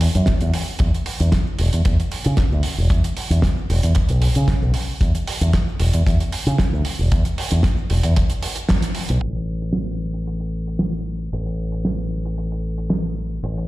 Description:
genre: nu-disco, nu disco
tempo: 114 BPM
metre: 4/4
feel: straight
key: unclear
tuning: A4 = 440 Hz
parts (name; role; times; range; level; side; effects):
- fingered electric bass with an envelope filter; bass; 0.0-13.7 s; E1 to C#3; -19 LUFS; equal; none
- damped 70s drum kit; drums; 0.0-13.7 s; hi-hat, shaker, snare drum; -26 LUFS; right 1 dB; studio reverb
- kick drum; drums; 0.3-8.8 s; none; -19 LUFS; equal; studio reverb
room: light reverb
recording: played on a big sound system in a bare room, large studio reverb, low-pass filter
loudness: -18 LUFS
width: side -18 dB against mid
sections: 0.0-9.2 A section; 9.2-13.7 B section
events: band accent 8.7; filter sweep 9.2-13.7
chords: none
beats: 0.28 | 0.80 1.33 1.85 2.38 | 2.91 3.43 3.96 4.49 | 5.01 5.54 6.06 6.59 | 7.12 7.64 8.17 8.70 | 9.22 9.75 10.28 10.80 | 11.33 11.85 12.38 12.91 | 13.43

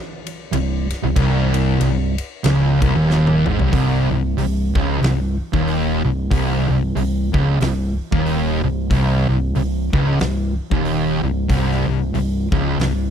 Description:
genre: stoner and doom metal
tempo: 93 BPM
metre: 4/4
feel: swing 59% on 8ths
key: C minor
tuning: A4 = 440 Hz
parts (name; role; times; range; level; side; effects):
- big rock drum kit; drums; 0.3-13.0 s; hi-hat, kick drum, ride cymbal, snare drum, toms; -24 LUFS; equal; none
- thick fuzz guitar; riff; 0.5-13.1 s; C2 to Ab2; -21 LUFS; left 9 dB; distortion
- thick fuzz guitar; riff; 0.5-13.1 s; C2 to Ab2; -20 LUFS; right 9 dB; distortion
- overdriven fingered electric bass; bass; 0.5-13.1 s; C1 to Ab1; -23 LUFS; equal; none
room: little or no reverb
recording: dry, close 1970s-style studio recording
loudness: -16 LUFS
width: side -8 dB against mid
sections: 0.0-3.7 A section; 3.7-13.1 B section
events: drum fill 3.1-3.7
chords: 0.0 Cm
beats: 0.53 | 1.17 1.81 2.45 3.09 | 3.73 4.38 5.02 5.67 | 6.32 6.96 7.61 8.26 | 8.90 9.55 10.20 10.85 | 11.49 12.14 12.79

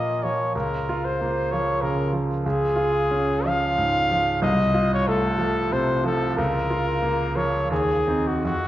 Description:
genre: classical, romantic duo for trumpet and grand piano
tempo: 81-97 BPM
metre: 3/4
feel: rubato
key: Bb minor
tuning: A4 = 441 Hz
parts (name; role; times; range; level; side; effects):
- warm trumpet; melody; 0.0-8.7 s; Gb4 to F5; -23 LUFS; left 1 dB; none
- clear concert grand piano; accompaniment; 0.0-8.7 s; C2 to F4; -23 LUFS; right 1 dB; none
room: wet recital hall reverb, RT60 1.7 s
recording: heard from further back in the room, nothing above 7.7 kHz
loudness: -20 LUFS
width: side -14 dB against mid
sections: 0.0-8.7 A section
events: none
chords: 0.0 Bbm; 0.5 Bbm/Db; 2.4 Db; 4.4 F/C; 6.4 Bbm/Db; 7.7 Ab7/Eb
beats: | 0.54 1.19 1.81 | 2.44 3.12 3.79 | 4.43 5.07 5.73 | 6.38 7.04 7.71 | 8.43

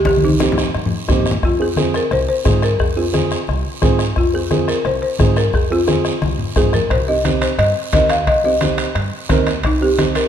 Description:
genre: latin, cumbia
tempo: 175 BPM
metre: 4/4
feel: straight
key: F minor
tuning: A4 = 440 Hz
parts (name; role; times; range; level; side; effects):
- folk marimba with medium hard mallets; melody; 0.0-10.2 s; Eb4 to F5; -18 LUFS; left 1 dB; none
- upright bass; bass; 0.0-10.2 s; C2 to Ab2; -22 LUFS; equal; none
- bombo; percussion; 0.1-10.3 s; none; -21 LUFS; left 2 dB; none
- congas; percussion; 0.1-10.2 s; none; -23 LUFS; left 2 dB; none
- guiro; percussion; 0.1-10.3 s; none; -30 LUFS; right 5 dB; none
- dark upright piano; accompaniment; 0.2-10.2 s; C4 to Bb4; -21 LUFS; right 5 dB; none
- timbales; percussion; 6.9-10.3 s; none; -27 LUFS; right 6 dB; none
room: moderate recital hall reverb, RT60 1.5 s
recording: minimal, uncompressed stereo recording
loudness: -14 LUFS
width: side -9 dB against mid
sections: 0.0-1.4 A section; 1.4-10.3 A section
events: drum fill 0.1-1.4, 6.2-6.9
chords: 0.0 Cm; 1.4 Fm; 6.9 Cm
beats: | 0.06 0.40 0.74 1.09 | 1.43 1.77 2.11 2.46 | 2.80 3.14 3.48 3.82 | 4.17 4.51 4.85 5.19 | 5.54 5.88 6.22 6.56 | 6.91 7.25 7.59 7.93 | 8.28 8.62 8.96 9.30 | 9.64 9.99

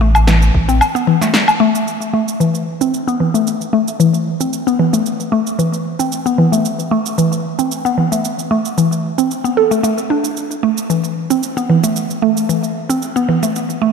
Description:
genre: organic downtempo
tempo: 113 BPM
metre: 4/4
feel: swing 53% on 16ths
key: A minor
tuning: A4 = 440 Hz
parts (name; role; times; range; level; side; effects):
- mallet-like synth pluck; arpeggios; 0.0-13.9 s; E3 to A4; -14 LUFS; equal; chorus, phaser, ping-pong delay
- warm sub bass; bass; 0.0-0.8 s; A1; -12 LUFS; equal; sidechain pumping
- electronic woodblock, shaker and snare drum; drums; 0.1-13.8 s; none; -19 LUFS; equal; none
- electronic kick drum; drums; 0.5-0.7 s; none; -20 LUFS; equal; none
room: wet lush hall reverb, RT60 2.6 s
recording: dark, warm production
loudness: -13 LUFS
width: side -6 dB against mid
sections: 0.0-1.9 A section; 1.9-13.9 B section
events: filter sweep on synth pluck 1.9-13.9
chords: 0.0 Esus4; 1.9 A5; 10.4 Esus4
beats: 0.28 0.81 1.34 | 1.87 2.40 2.93 3.46 | 4.00 4.53 5.06 5.59 | 6.12 6.65 7.18 7.71 | 8.24 8.77 9.30 9.84 | 10.37 10.90 11.43 11.96 | 12.49 13.02 13.55

